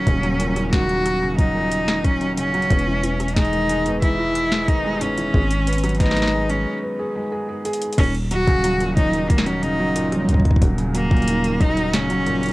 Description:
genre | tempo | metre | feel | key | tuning
IDM | 91 BPM | 4/4 | straight | Eb phrygian | A4 = 442 Hz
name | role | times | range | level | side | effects
clear cello | melody | 0.0-12.5 s | Bb3 to Gb4 | -22 LUFS | equal | cassette tape, tape echo
felt-muted upright piano | arpeggios | 0.0-12.5 s | Bb2 to Ab4 | -24 LUFS | right 1 dB | cassette tape, analog delay
deep acid bass | bass | 0.0-12.5 s | Eb1 to Ab1 | -25 LUFS | equal | none
booming analog drum machine | drums | 0.1-12.5 s | congas, crash cymbal, hi-hat, rim click, snare drum | -26 LUFS | equal | none
electronic kick drum | drums | 0.1-11.7 s | none | -17 LUFS | equal | none
room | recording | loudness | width
light reverb, digital ambience | home recording on cassette | -17 LUFS | side -19 dB against mid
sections
0.0-8.0 A section; 8.0-12.5 B section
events
break 6.7-8.0; drum fill 7.7-8.0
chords
0.0 Ebm7; 2.7 Emaj7; 5.3 Abm7; 8.0 Ebm7

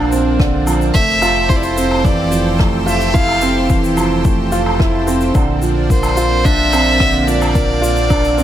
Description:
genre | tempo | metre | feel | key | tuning
piano and strings electronica | 109 BPM | 4/4 | straight | F major | A4 = 440 Hz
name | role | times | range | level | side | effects
warm violin | melody | 0.0-8.4 s | C5 to F5 | -17 LUFS | equal | none
lush unison pad | sustained chords | 0.0-8.4 s | Bb3 to C5 | -23 LUFS | equal | chorus, sidechain pumping
felt-muted upright piano | riff | 0.0-8.4 s | D3 to F4 | -17 LUFS | right 2 dB | digital delay
round analog bass | bass | 0.0-8.4 s | F1 to Bb1 | -20 LUFS | left 1 dB | sidechain pumping
shaker, rim click and woodblock | drums | 0.1-8.4 s | none | -25 LUFS | right 1 dB | none
electronic kick drum | drums | 0.4-8.2 s | none | -16 LUFS | left 1 dB | overdrive
room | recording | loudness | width
light reverb | none | -12 LUFS | side -11 dB against mid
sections
0.0-8.4 A section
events
none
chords
0.0 Bbadd9; 0.9 Fmaj7; 5.3 Bbadd9

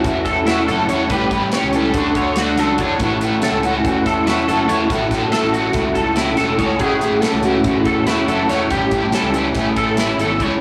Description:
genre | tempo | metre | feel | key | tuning
math rock and midwest emo | 284 BPM (eighths) | 9/8 | straight | A major | A4 = 440 Hz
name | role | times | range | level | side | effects
electric guitar through a small old amp | accompaniment | 0.0-10.6 s | A2 to G#4 | -23 LUFS | equal | ensemble chorus
twelve-string electric guitar | arpeggios | 0.0-10.6 s | E4 to C#5 | -23 LUFS | equal | ensemble chorus
overdriven electric guitar | riff | 0.0-10.6 s | A2 to A4 | -22 LUFS | equal | harmonic tremolo
fuzz fingered electric bass | bass | 0.0-10.5 s | E1 to E2 | -27 LUFS | equal | overdrive, transformer saturation
modern studio drum kit | drums | 0.0-10.5 s | hi-hat, kick drum, snare drum | -28 LUFS | equal | none
room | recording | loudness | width
moderate scoring stage reverb, RT60 2.0 s | blown-out, overdriven recording, overdrive, small room ambience | -17 LUFS | mono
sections
0.0-10.6 A section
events
none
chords
0.0 A6; 1.1 A7; 1.9 Dmaj7; 3.0 A6; 4.9 F#m7/A; 6.8 A6; 8.7 A7; 9.5 Amaj9

